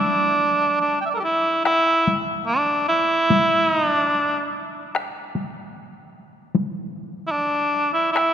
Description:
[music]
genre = japanese traditional, Japanese chamber music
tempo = 74 BPM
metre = 4/4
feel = rubato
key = unclear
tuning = A4 = 440 Hz
[part]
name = warm cor anglais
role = melody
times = 0.0-8.3 s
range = D4 to G5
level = -18 LUFS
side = right 1 dB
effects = none
[part]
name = taiko ensemble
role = percussion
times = 1.7-8.3 s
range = none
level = -26 LUFS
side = left 2 dB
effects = none
[sound]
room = wet church reverb, RT60 3.5 s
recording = none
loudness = -18 LUFS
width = side -9 dB against mid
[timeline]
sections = 0.0-8.3 A section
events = none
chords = none

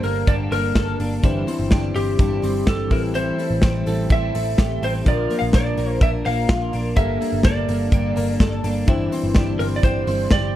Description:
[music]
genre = jangly indie pop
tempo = 126 BPM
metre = 4/4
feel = straight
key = C mixolydian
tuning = A4 = 442 Hz
[part]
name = lightly driven lead guitar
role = melody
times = 0.0-10.5 s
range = G4 to F5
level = -25 LUFS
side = right 1 dB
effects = analog delay
[part]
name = picked steel-string acoustic guitar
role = accompaniment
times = 0.0-10.6 s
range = G2 to Bb4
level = -29 LUFS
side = right 5 dB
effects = none
[part]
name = reed electric piano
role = accompaniment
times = 0.0-10.6 s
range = Bb3 to A5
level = -31 LUFS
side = left 6 dB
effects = none
[part]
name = twelve-string electric guitar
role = arpeggios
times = 0.0-10.6 s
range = E3 to A4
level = -27 LUFS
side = left 4 dB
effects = ensemble chorus, analog delay
[part]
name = vintage muted picked electric bass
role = bass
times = 0.0-10.6 s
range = G1 to Bb1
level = -24 LUFS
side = equal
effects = none
[part]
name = modern studio drum kit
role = drums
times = 0.0-10.4 s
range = hi-hat, kick drum, snare drum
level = -20 LUFS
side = equal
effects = none
[sound]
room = small room ambience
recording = dark, warm production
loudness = -17 LUFS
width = side -13 dB against mid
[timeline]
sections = 0.0-10.6 A section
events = none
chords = 0.0 Gmadd9; 1.2 Cadd9/G; 2.9 Am7; 5.1 Bb; 7.0 Gmadd9; 8.9 Cadd9/G

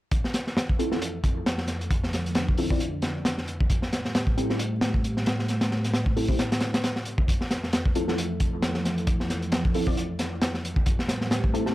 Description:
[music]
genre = breakbeat, breaks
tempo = 134 BPM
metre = 4/4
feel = swing 56% on 16ths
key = unclear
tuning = A4 = 439 Hz
[part]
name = dark analog pad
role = sustained chords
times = 0.1-11.7 s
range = F3 to C5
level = -30 LUFS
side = equal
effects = chorus, sidechain pumping
[part]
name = crunchy breakbeat drum kit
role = drums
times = 0.1-11.7 s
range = hi-hat, kick drum, snare drum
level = -25 LUFS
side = equal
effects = none
[part]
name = orchestra-hit-like synth stab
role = stabs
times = 0.8-11.7 s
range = C4 to D5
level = -31 LUFS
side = left 1 dB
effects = built-in reverb, dub echo
[sound]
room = light reverb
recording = vinyl crackle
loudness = -23 LUFS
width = side -16 dB against mid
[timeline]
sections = 0.1-11.7 A section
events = none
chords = 0.1 Fmaj7; 3.7 Am7; 7.3 Fmaj7; 10.9 Am7

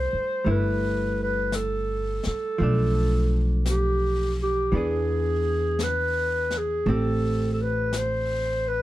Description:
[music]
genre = jazz ballad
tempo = 56 BPM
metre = 4/4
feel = swing 68% on 8ths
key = C major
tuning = A4 = 439 Hz
[part]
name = growling clarinet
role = melody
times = 0.0-8.8 s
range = G4 to C5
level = -26 LUFS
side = equal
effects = none
[part]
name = hollow-body jazz guitar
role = accompaniment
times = 0.0-8.8 s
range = E3 to G#4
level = -30 LUFS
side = right 3 dB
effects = none
[part]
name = upright bass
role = bass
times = 0.0-8.8 s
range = G1 to E2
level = -26 LUFS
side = equal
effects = none
[part]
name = jazz brush drum kit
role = drums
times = 0.5-8.8 s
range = brushed snare drum, hi-hat, snare drum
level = -38 LUFS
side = left 4 dB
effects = none
[sound]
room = little or no reverb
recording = close, detailed microphones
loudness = -22 LUFS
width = side -15 dB against mid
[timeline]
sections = 0.0-8.8 A section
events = none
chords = 0.0 C6; 2.6 Bm7b5; 4.7 E7; 6.9 Am9

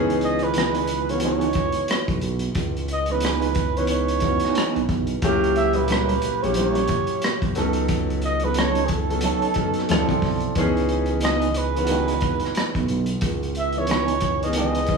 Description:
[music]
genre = R&B, neo-soul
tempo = 90 BPM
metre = 4/4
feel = swing 59% on 16ths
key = C# minor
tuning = A4 = 440 Hz
[part]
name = warm concert grand piano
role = accompaniment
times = 0.0-15.0 s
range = A#2 to B4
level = -24 LUFS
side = left 1 dB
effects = none
[part]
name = smooth synth bass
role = bass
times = 0.0-15.0 s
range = A#1 to D2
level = -26 LUFS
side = right 2 dB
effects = none
[part]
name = crunchy breakbeat drum kit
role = drums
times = 0.1-15.0 s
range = hi-hat, kick drum, rim click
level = -27 LUFS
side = equal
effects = none
[part]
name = warm flugelhorn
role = melody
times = 0.2-15.0 s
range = G#4 to E5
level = -25 LUFS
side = right 3 dB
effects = none
[part]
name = electric guitar through a small old amp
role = second line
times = 0.6-14.8 s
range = E3 to A#4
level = -27 LUFS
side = right 5 dB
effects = tremolo
[sound]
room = moderate large studio reverb, RT60 1.2 s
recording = band playing live in one room, studio reverb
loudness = -20 LUFS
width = side -4 dB against mid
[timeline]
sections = 0.0-10.6 A section; 10.6-15.0 A section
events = none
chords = 0.0 C#m9; 5.2 F#7b9; 7.6 B9/C#; 9.9 Dm9; 10.6 C#m9

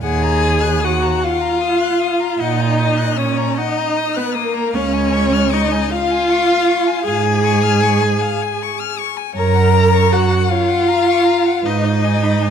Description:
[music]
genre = classical, slow romantic movement for string quartet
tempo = 52 BPM (dotted quarters)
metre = 12/8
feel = rubato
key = Eb minor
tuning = A4 = 440 Hz
[part]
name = rich violin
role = melody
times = 0.0-12.5 s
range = Cb5 to Gb6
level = -24 LUFS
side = left 13 dB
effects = none
[part]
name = warm violin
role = second line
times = 0.0-12.5 s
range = Bb4 to Bb5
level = -21 LUFS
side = left 7 dB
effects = none
[part]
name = rich viola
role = accompaniment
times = 0.0-12.5 s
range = Bb3 to Bb4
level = -18 LUFS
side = right 1 dB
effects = none
[part]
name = rich cello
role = bass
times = 0.0-12.5 s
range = Db2 to Bb2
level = -18 LUFS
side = right 4 dB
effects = none
[sound]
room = moderate scoring stage reverb, RT60 2.1 s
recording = none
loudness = -14 LUFS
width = side -8 dB against mid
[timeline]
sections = 0.0-12.5 A section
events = none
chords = 0.0 Ebm; 4.8 Db; 9.4 Gb; 11.7 Abm

